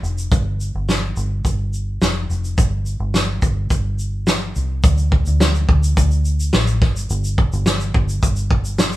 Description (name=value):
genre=acoustic pop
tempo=106 BPM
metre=4/4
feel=straight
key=unclear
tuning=A4 = 440 Hz
part: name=vintage muted fingered electric bass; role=bass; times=0.0-9.0 s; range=F1 to D2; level=-19 LUFS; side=equal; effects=none
part: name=loose indie drum kit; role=drums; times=0.0-9.0 s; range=kick drum, shaker, snare drum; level=-18 LUFS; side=equal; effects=none
room=moderate studio reverb, RT60 0.5 s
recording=band playing live in one room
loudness=-16 LUFS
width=side -16 dB against mid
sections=0.0-4.8 A section; 4.8-9.0 B section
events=none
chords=none